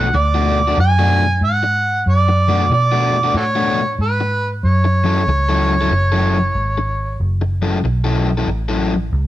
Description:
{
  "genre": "electric blues shuffle",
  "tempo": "93 BPM",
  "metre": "4/4",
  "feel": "swing 64% on 8ths",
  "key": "F# minor",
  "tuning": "A4 = 439 Hz",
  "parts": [
    { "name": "overdriven harmonica", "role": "melody", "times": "0.0-7.2 s", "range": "F#4 to G#5", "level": "-18 LUFS", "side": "right 2 dB", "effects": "none" },
    { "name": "overdriven semi-hollow guitar", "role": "riff", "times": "0.0-8.9 s", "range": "B2 to A4", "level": "-21 LUFS", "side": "left 4 dB", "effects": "none" },
    { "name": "vintage muted fingered electric bass", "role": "bass", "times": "0.0-9.3 s", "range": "F#1 to B2", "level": "-17 LUFS", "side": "equal", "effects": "none" }
  ],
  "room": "light reverb",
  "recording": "band playing live in one room",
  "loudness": "-14 LUFS",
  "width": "side -14 dB against mid",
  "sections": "0.0-9.3 A section",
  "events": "none",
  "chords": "0.0 Bm7; 4.6 F#m7",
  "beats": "0.14 0.78 1.42 | 2.07 2.71 3.35 3.99 | 4.63 5.28 5.92 6.56 | 7.20 7.84 8.49 9.13"
}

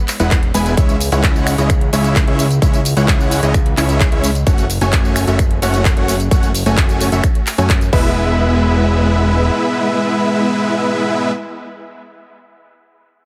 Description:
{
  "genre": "EDM, festival progressive house",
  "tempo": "130 BPM",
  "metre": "4/4",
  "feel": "straight",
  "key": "E major",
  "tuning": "A4 = 440 Hz",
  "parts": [
    { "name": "big-room dance drum kit", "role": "drums", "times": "0.1-8.0 s", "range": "crash cymbal, finger snaps, handclaps, hi-hat, tambourine", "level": "-24 LUFS", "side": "equal", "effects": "none" },
    { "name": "dense compressed supersaw", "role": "riff", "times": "0.2-11.3 s", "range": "G#3 to G#5", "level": "-19 LUFS", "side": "equal", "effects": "sidechain pumping, dub echo" },
    { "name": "fat analog bass", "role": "bass", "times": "0.2-9.5 s", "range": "E1 to F#2", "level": "-20 LUFS", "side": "equal", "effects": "sidechain pumping" },
    { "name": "electronic kick drum", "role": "drums", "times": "0.3-8.0 s", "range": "none", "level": "-17 LUFS", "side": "equal", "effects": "none" }
  ],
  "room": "light reverb, digital ambience",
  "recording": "heavily compressed radio sound",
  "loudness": "-15 LUFS",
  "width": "mono",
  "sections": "0.0-8.2 A section; 8.2-11.9 B section",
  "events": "drop 0.0-8.2",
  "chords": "0.0 E; 0.8 C#m; 4.5 F#m; 7.9 E",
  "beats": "0.31 | 0.77 1.24 1.70 2.16 | 2.62 3.08 3.54 4.00 | 4.47 4.93 5.39 5.85 | 6.31 6.77 7.24 7.70 | 8.16 8.62 9.08 9.54 | 10.01 10.47 10.93"
}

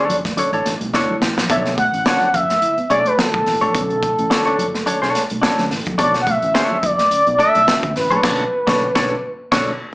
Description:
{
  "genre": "funk",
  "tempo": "107 BPM",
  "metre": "4/4",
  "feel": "swing 56% on 16ths",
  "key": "B minor",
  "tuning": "A4 = 440 Hz",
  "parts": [
    { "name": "expressive synth lead", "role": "melody", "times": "0.0-9.9 s", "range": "A4 to F#5", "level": "-17 LUFS", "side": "equal", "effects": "chorus, slapback echo" },
    { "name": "semi-hollow electric guitar", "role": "accompaniment", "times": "0.0-9.7 s", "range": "D4 to D5", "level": "-19 LUFS", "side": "left 1 dB", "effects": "wide subtle chorus, slapback echo" },
    { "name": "mellow tine electric piano", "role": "stabs", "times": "0.0-9.7 s", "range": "D3 to D5", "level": "-29 LUFS", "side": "right 1 dB", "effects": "medium stereo tremolo, slapback echo" },
    { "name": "mellow electric guitar", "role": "riff", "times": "0.1-8.2 s", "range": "F#3 to B3", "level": "-29 LUFS", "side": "right 2 dB", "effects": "none" },
    { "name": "fretless electric bass", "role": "bass", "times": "0.1-9.7 s", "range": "F#1 to D2", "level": "-28 LUFS", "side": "equal", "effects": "none" },
    { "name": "crunchy breakbeat drum kit", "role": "drums", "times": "0.1-9.7 s", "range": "crash cymbal, hi-hat, kick drum, snare drum", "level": "-22 LUFS", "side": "equal", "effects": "none" },
    { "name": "congas", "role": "percussion", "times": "0.1-8.2 s", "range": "none", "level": "-31 LUFS", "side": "right 1 dB", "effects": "none" }
  ],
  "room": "light reverb",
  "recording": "live gig heard through the venue's PA, club reverb, small speaker sound",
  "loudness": "-15 LUFS",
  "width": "side -22 dB against mid",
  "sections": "0.0-9.9 A section",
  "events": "drum fill 0.9-1.5; tine electric piano fill 5.1-6.0; band accent 8.2-9.9",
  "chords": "0.0 Bm9",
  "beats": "0.37 0.93 | 1.49 2.06 2.62 3.18 | 3.74 4.30 4.86 5.42 | 5.99 6.55 7.11 7.67 | 8.23 8.80 9.36"
}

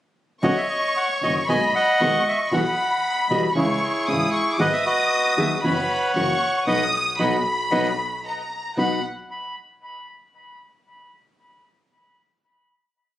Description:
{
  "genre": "tango",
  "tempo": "115 BPM",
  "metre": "4/4",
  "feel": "rubato",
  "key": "B major",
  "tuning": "A4 = 440 Hz",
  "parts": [
    { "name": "bandoneon", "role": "melody", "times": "0.4-9.0 s", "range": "E4 to B5", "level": "-22 LUFS", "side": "equal", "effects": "plate reverb, tape echo" },
    { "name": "warm studio violin section", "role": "second line", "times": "0.4-9.0 s", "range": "F#5 to D#6", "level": "-25 LUFS", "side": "left 1 dB", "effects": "none" },
    { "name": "nylon-string guitar", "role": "accompaniment", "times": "0.4-9.0 s", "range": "B2 to G#4", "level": "-24 LUFS", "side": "equal", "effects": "none" },
    { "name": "clear double bass", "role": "bass", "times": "0.4-9.0 s", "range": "F#1 to D#2", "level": "-29 LUFS", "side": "equal", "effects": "none" }
  ],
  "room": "moderate large studio reverb, RT60 1.0 s",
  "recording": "recorded on a phone in the room, studio ambience, compression",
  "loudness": "-19 LUFS",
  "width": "side -13 dB against mid",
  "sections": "0.4-8.8 A section; 8.8-10.9 final chord",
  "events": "band accent 6.7-8.8",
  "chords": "0.4 Badd9; 1.5 G#m7/B; 2.5 Emadd9/B; 3.6 C#m; 4.6 G#m7; 5.6 F#7sus4; 6.2 F#7; 6.7 B; 8.3 N.C.; 8.8 B",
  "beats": "| 0.43 0.95 1.48 2.00 | 2.52 3.04 3.56 4.08 | 4.60 5.12 5.64 6.16 | 6.68 7.20 7.72 8.25 | 8.78"
}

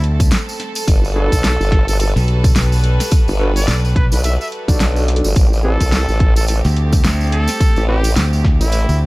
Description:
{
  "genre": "glitch hop",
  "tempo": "107 BPM",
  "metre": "4/4",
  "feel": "swing 58% on 16ths",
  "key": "A dorian",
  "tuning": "A4 = 440 Hz",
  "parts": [
    { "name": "clear trumpet", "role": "melody", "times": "0.0-9.0 s", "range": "E4 to E5", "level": "-25 LUFS", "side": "equal", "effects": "dub echo" },
    { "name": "warm chamber string section", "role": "sustained chords", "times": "0.0-9.1 s", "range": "G3 to B4", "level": "-27 LUFS", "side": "equal", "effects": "sidechain pumping" },
    { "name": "modern bright fingered electric bass", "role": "bass", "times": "0.0-9.1 s", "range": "B1 to D2", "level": "-15 LUFS", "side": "equal", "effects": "none" },
    { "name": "pop drum kit", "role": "drums", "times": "0.0-8.9 s", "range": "hi-hat, snare drum", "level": "-22 LUFS", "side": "equal", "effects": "studio ambience" },
    { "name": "electronic kick drum", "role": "drums", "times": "0.2-8.6 s", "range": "none", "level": "-14 LUFS", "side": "equal", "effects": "studio ambience" },
    { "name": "tambourine", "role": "percussion", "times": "0.2-9.0 s", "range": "none", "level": "-28 LUFS", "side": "right 2 dB", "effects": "none" },
    { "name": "formant-sweep wobble bass", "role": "bass", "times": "0.9-8.9 s", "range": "G1 to C2", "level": "-16 LUFS", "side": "equal", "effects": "chorus, tube saturation" },
    { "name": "overdriven tine electric piano", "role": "stabs", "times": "1.2-8.0 s", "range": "C4 to D5", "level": "-24 LUFS", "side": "right 1 dB", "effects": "medium tremolo, vintage 12-bit sampler grit, sidechain pumping, dub echo" }
  ],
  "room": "little or no reverb",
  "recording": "vinyl crackle",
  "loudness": "-13 LUFS",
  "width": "side -22 dB against mid",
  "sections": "0.0-9.1 A section",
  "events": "none",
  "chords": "0.0 Am; 0.9 Gmaj9; 5.4 Am7",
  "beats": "0.32 | 0.88 1.44 2.00 2.56 | 3.12 3.68 4.24 4.80 | 5.36 5.92 6.49 7.05 | 7.61 8.17 8.73"
}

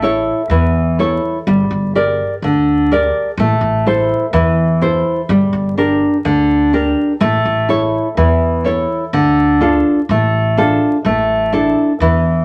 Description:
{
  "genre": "greek folk, Greek bouzouki band",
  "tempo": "125 BPM",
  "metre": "4/4",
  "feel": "straight",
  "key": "unclear",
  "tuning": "A4 = 440 Hz",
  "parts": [
    { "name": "nylon-string guitar", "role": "accompaniment", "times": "0.0-12.4 s", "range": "D3 to D5", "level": "-16 LUFS", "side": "equal", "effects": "none" },
    { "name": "upright bass", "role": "bass", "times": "0.0-12.4 s", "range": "G1 to E2", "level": "-22 LUFS", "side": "equal", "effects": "none" }
  ],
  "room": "wet studio reverb, RT60 0.7 s",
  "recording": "vinyl crackle",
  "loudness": "-15 LUFS",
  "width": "mono",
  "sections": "0.0-9.1 A section; 9.1-12.4 B section",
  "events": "none",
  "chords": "0.0 A; 1.5 Gm; 3.4 Am; 5.3 Gm; 7.2 A; 9.1 Dm; 11.1 Asus4",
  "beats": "0.03 0.51 0.98 | 1.46 1.94 2.42 2.90 | 3.38 3.86 4.34 4.82 | 5.30 5.78 6.25 6.73 | 7.21 7.69 8.17 8.65 | 9.13 9.61 10.09 10.57 | 11.05 11.53 12.01"
}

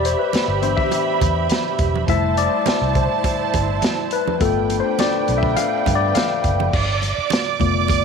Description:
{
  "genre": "lush 1970s-style soul",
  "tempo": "103 BPM",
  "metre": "4/4",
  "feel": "straight",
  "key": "unclear",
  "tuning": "A4 = 440 Hz",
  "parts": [
    { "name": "warm symphonic string section", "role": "second line", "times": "0.0-8.0 s", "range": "D4 to D6", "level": "-22 LUFS", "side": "right 13 dB", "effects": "none" },
    { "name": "tine electric piano", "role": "accompaniment", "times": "0.0-8.0 s", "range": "E3 to F5", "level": "-21 LUFS", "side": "left 10 dB", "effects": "overdrive" },
    { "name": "vintage muted fingered electric bass", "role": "bass", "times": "0.0-8.0 s", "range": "E1 to G2", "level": "-22 LUFS", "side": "right 1 dB", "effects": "none" },
    { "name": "vintage drum kit", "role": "drums", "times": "0.0-8.0 s", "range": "crash cymbal, hi-hat, kick drum, snare drum", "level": "-23 LUFS", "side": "right 1 dB", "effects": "none" },
    { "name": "congas", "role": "percussion", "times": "0.3-8.0 s", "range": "none", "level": "-30 LUFS", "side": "right 11 dB", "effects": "none" }
  ],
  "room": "moderate echo chamber reverb, RT60 2.0 s",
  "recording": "1960s-style stereo with parts hard left and right",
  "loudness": "-17 LUFS",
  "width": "side -6 dB against mid",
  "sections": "0.0-6.7 A section; 6.7-8.0 B section",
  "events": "tine electric piano solo 0.0-6.7, 6.7-8.0",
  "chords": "0.0 Em7; 2.1 Fmaj9; 4.4 G9",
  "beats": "0.34 0.92 1.51 | 2.09 2.67 3.25 3.83 | 4.41 5.00 5.58 6.16 | 6.74 7.32 7.90"
}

